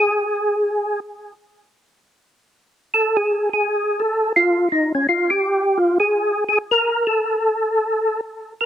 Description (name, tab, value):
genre	jazz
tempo	170 BPM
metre	4/4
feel	swing 64% on 8ths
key	unclear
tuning	A4 = 440 Hz
part	percussive tonewheel organ	solo	0.0-8.7 s	Db4 to Bb4	-17 LUFS	equal	slow rotary speaker, chorus vibrato, slapback echo
room	little or no reverb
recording	recorded outdoors, with no room sound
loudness	-17 LUFS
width	side -10 dB against mid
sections	0.0-8.6 A section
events	none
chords	none